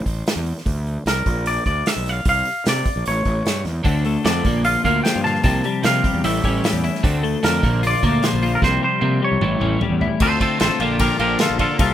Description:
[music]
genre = indie rock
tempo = 151 BPM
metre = 4/4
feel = straight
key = unclear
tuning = A4 = 440 Hz
[part]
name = fuzz fingered electric bass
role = bass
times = 0.1-11.9 s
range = A1 to C3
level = -24 LUFS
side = equal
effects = overdrive
[part]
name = unplugged drum kit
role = drums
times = 0.1-11.9 s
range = crash cymbal, hi-hat, kick drum, ride cymbal, snare drum, toms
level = -23 LUFS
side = right 1 dB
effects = none
[part]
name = twangy electric guitar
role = melody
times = 1.1-11.9 s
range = F4 to A5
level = -22 LUFS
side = equal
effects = none
[part]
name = twelve-string electric guitar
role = riff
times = 3.8-11.8 s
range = A2 to F4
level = -24 LUFS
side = right 5 dB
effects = analog chorus
[part]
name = twelve-string electric guitar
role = riff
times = 3.9-11.9 s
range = A2 to F4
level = -22 LUFS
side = left 7 dB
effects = analog chorus
[sound]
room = little or no reverb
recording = rough home demo mix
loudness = -17 LUFS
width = side -11 dB against mid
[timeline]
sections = 0.0-10.2 A section; 10.2-11.9 B section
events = drum fill 8.6-10.2; clean electric guitar solo 10.2-11.9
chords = 0.0 A5; 0.7 Bbadd9; 1.3 Bb; 2.3 Csus4; 3.1 A7; 3.9 Dm7; 4.5 Bb; 5.4 C7sus4; 6.2 A7; 7.0 Dm7; 7.6 Bb; 8.6 C7sus4; 9.4 A7; 10.2 Dm7; 10.8 Bb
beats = 0.26 | 0.66 1.06 1.46 1.86 | 2.26 2.66 3.06 3.46 | 3.86 4.25 4.65 5.05 | 5.45 5.85 6.24 6.64 | 7.04 7.43 7.83 8.23 | 8.62 9.02 9.42 9.81 | 10.21 10.61 11.00 11.40 | 11.79

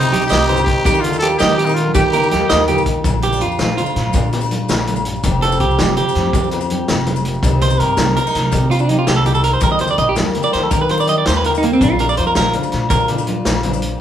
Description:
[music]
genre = highlife guitar band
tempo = 110 BPM (dotted quarters)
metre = 12/8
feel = straight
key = Bb major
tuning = A4 = 440 Hz
[part]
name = growling trumpet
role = melody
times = 0.0-2.6 s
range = Eb4 to A4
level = -19 LUFS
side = equal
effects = none
[part]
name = brilliant trombone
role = second line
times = 0.0-2.7 s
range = C3 to F3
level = -28 LUFS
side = left 2 dB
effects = none
[part]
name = fingerpicked steel-string acoustic guitar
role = accompaniment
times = 0.0-14.0 s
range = F2 to G4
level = -23 LUFS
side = left 4 dB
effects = none
[part]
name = electric guitar at the edge of break-up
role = arpeggios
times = 0.0-13.1 s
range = Bb3 to Eb5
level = -17 LUFS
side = right 3 dB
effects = none
[part]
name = upright bass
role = bass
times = 0.0-13.9 s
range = F1 to Eb3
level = -20 LUFS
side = equal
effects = none
[part]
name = maracas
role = percussion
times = 0.0-13.8 s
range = none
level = -34 LUFS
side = left 5 dB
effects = none
[part]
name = vintage drum kit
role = drums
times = 0.1-13.9 s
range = hi-hat, kick drum, snare drum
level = -21 LUFS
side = equal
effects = none
[part]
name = congas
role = percussion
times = 0.1-13.7 s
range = none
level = -24 LUFS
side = equal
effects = none
[part]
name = agogo bells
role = percussion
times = 0.3-13.8 s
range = none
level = -27 LUFS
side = left 5 dB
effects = none
[sound]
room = moderate large studio reverb, RT60 1.2 s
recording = band playing live in one room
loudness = -13 LUFS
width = side -10 dB against mid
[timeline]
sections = 0.0-3.0 A section; 3.0-14.0 B section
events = clean electric guitar solo 3.0-14.0; drum fill 10.9-11.8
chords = 0.0 Cm; 0.9 Eb; 3.0 Bb; 5.2 Fsus2; 7.4 Cm; 9.6 Eb; 11.8 Bb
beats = 0.31 | 0.86 1.40 1.95 2.50 | 3.05 3.60 4.15 4.70 | 5.24 5.79 6.34 6.89 | 7.44 7.99 8.53 9.08 | 9.63 10.17 10.72 11.27 | 11.81 12.36 12.91 13.45 | 14.00

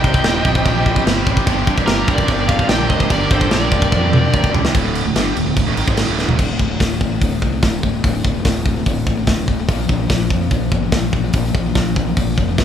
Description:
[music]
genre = heavy metal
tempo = 146 BPM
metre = 4/4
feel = straight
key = D phrygian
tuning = A4 = 440 Hz
[part]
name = bluesy overdriven lead guitar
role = melody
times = 0.0-4.5 s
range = Bb4 to G5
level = -22 LUFS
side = equal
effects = distortion
[part]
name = high-gain lead guitar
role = second line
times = 0.0-4.5 s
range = G4 to Eb5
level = -26 LUFS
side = right 1 dB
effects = distortion
[part]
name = dark chamber string section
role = sustained chords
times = 0.0-4.7 s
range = C3 to A5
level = -30 LUFS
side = right 1 dB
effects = none
[part]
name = high-gain distorted guitar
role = riff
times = 0.0-12.6 s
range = D2 to C5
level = -22 LUFS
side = left 8 dB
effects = distortion
[part]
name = high-gain distorted guitar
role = riff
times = 0.0-6.4 s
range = D2 to G#3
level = -22 LUFS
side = right 8 dB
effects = distortion
[part]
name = fuzz fingered electric bass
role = bass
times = 0.0-12.6 s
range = D1 to G2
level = -21 LUFS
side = equal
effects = overdrive
[part]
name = tight metal drum kit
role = drums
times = 0.0-12.6 s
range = china cymbal, crash cymbal, hi-hat, kick drum, snare drum, toms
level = -17 LUFS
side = equal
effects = none
[sound]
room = light reverb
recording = band playing live in one room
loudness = -14 LUFS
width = side -9 dB against mid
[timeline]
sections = 0.0-4.7 A section; 4.7-6.4 B section; 6.4-12.6 C section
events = drum fill 3.9-4.7, 6.2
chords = 0.0 Cm; 1.5 Gm; 4.7 D5; 9.7 Bb5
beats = 0.24 0.65 1.06 | 1.47 1.88 2.29 2.69 | 3.10 3.51 3.92 4.33 | 4.74 5.15 5.56 5.97 | 6.39 6.80 7.21 7.62 | 8.04 8.45 8.86 9.28 | 9.69 10.10 10.52 10.93 | 11.34 11.75 12.16 12.58

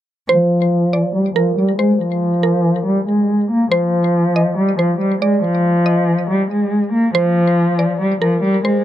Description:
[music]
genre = hip hop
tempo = 140 BPM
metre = 4/4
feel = half-time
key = unclear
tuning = A4 = 437 Hz
[part]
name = dark cello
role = melody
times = 0.3-8.8 s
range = F3 to Bb3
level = -14 LUFS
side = equal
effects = low-pass filter, ping-pong delay
[part]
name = mallet-like synth pluck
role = second line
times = 0.3-8.8 s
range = Bb4 to Eb5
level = -20 LUFS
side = right 2 dB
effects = chorus, ping-pong delay
[sound]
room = wet booth ambience, RT60 0.2 s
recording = none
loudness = -14 LUFS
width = side -12 dB against mid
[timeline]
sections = 0.3-8.8 A section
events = filter sweep on cello 0.3-8.8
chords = none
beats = | 0.29 0.72 1.15 1.57 | 2.00 2.43 2.86 3.29 | 3.72 4.15 4.58 5.00 | 5.43 5.86 6.29 6.72 | 7.15 7.58 8.00 8.43

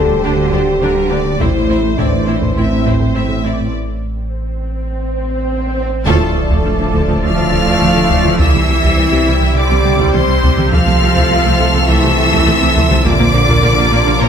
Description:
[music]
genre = cinematic, hybrid orchestral and electronic film score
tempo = 103 BPM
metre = 4/4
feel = straight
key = D minor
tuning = A4 = 439 Hz
[part]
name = clear symphonic violin section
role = second line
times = 0.0-14.3 s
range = A4 to F5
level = -20 LUFS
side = left 2 dB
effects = none
[part]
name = mellow French horn section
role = sustained chords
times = 0.0-14.3 s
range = C4 to A4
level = -22 LUFS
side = left 2 dB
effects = none
[part]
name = sweeping resonant pad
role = sustained chords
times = 0.0-14.3 s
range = C3 to D5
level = -21 LUFS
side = equal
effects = chorus
[part]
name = soft round pluck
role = arpeggios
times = 0.0-14.3 s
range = C3 to Bb4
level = -26 LUFS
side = right 3 dB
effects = none
[part]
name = pure sine sub bass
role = bass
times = 0.0-14.3 s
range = D1 to C2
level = -20 LUFS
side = equal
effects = none
[part]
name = rich symphonic cello section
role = bass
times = 0.0-14.3 s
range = A2 to F3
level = -19 LUFS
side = right 2 dB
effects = none
[part]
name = rich symphonic double bass section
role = bass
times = 0.0-14.3 s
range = A1 to D2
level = -21 LUFS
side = right 4 dB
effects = none
[part]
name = smooth synth bass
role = riff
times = 0.1-14.3 s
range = C2 to Bb3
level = -22 LUFS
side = left 3 dB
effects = none
[part]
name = taiko ensemble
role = drums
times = 0.1-14.0 s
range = none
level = -19 LUFS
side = right 1 dB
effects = none
[part]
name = clear symphonic violin section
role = melody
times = 0.2-14.3 s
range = D5 to F6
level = -20 LUFS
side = left 3 dB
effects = none
[part]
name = bright symphonic viola section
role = accompaniment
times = 0.2-14.3 s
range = F3 to A4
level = -23 LUFS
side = right 1 dB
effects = none
[part]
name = swell and sub drop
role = sound effects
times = 4.3-8.4 s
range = none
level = -22 LUFS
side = right 1 dB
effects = none
[part]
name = warm trombone section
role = sustained chords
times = 6.1-14.3 s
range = A2 to Bb3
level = -23 LUFS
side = right 5 dB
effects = none
[sound]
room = moderate scoring stage reverb, RT60 1.7 s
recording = none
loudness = -11 LUFS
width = side -8 dB against mid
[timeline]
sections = 0.0-6.1 A section; 6.1-14.3 B section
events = break 3.7-6.1; swell 4.3-6.1; drum fill 5.5-6.1; band accent 6.1-6.6; impact 6.1-8.4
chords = 0.0 Gm/D; 1.4 Am; 6.1 Dm; 8.4 C; 10.7 F/C; 13.1 Bb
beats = 0.23 0.82 | 1.40 1.98 2.56 3.15 | 3.73 4.31 4.90 5.48 | 6.06 6.64 7.23 7.81 | 8.39 8.97 9.56 10.14 | 10.72 11.30 11.89 12.47 | 13.05 13.63 14.22

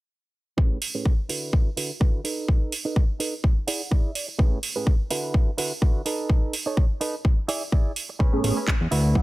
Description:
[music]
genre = filtered disco house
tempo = 126 BPM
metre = 4/4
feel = swing 55% on 16ths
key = A major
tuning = A4 = 436 Hz
[part]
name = direct-recorded clean electric guitar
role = riff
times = 0.6-9.2 s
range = A2 to F#5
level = -31 LUFS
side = right 3 dB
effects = sidechain pumping, low-pass filter
[part]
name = electronic kick drum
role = drums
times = 0.6-9.2 s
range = none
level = -20 LUFS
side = equal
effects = none
[part]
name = house drum kit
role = drums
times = 0.8-9.0 s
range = handclaps, hi-hat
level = -29 LUFS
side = right 3 dB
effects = sidechain pumping on hats
[part]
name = funky polysynth comp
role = accompaniment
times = 8.3-9.2 s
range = F#3 to G#4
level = -26 LUFS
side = right 2 dB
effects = chorus, phaser, sidechain pumping, low-pass filter
[part]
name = fat analog bass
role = bass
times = 8.3-9.2 s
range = A1 to F#2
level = -22 LUFS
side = equal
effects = tube saturation, sidechain pumping, low-pass filter
[sound]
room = little or no reverb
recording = none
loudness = -22 LUFS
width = side -19 dB against mid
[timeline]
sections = 0.6-9.2 A section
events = filter sweep 0.6-9.2; clean electric guitar fill 3.4-4.4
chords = 0.6 Amaj9; 1.3 D69; 2.2 B7/D#; 3.4 E7; 4.4 Amaj9; 5.1 D69; 6.1 B7/D#; 7.2 E7; 8.2 Amaj9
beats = | 0.58 1.06 1.54 2.01 | 2.49 2.96 3.44 3.92 | 4.39 4.87 5.34 5.82 | 6.30 6.77 7.25 7.73 | 8.20 8.68 9.15

